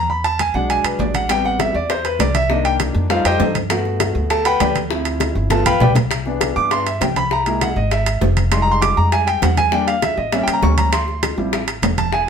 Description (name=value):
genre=Afro-Cuban jazz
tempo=199 BPM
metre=4/4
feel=straight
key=G major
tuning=A4 = 440 Hz
part: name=clear grand piano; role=accompaniment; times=0.0-12.3 s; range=Eb3 to D6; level=-18 LUFS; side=equal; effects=none
part: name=upright bass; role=bass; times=0.0-12.3 s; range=E1 to G2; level=-21 LUFS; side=equal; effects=none
part: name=congas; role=percussion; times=0.1-12.3 s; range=none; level=-24 LUFS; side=right 1 dB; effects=none
part: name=timbales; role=percussion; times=0.2-12.1 s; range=none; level=-24 LUFS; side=right 3 dB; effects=none
part: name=bongos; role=percussion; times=1.3-12.3 s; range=none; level=-25 LUFS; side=left 6 dB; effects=none
room=moderate studio reverb, RT60 0.7 s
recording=band playing live in one room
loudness=-15 LUFS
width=side -7 dB against mid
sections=0.0-6.1 A section; 6.1-12.3 A section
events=grand piano solo 0.0-12.3; drum fill 5.5-6.1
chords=0.1 E7; 1.3 Am9; 2.5 Cm7; 3.1 F9; 3.7 Gmaj7; 4.9 Dm7; 5.5 G7; 6.1 Cmaj9; 7.3 Caug7; 8.5 Fm9; 9.7 Em7b5; 10.3 A7b9; 10.9 Dm11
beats=| 0.09 0.39 0.69 0.99 | 1.30 1.60 1.90 2.20 | 2.50 2.80 3.10 3.40 | 3.70 4.00 4.30 4.61 | 4.91 5.21 5.51 5.81 | 6.11 6.41 6.71 7.01 | 7.31 7.62 7.92 8.22 | 8.52 8.82 9.12 9.42 | 9.72 10.03 10.33 10.63 | 10.93 11.23 11.53 11.83 | 12.13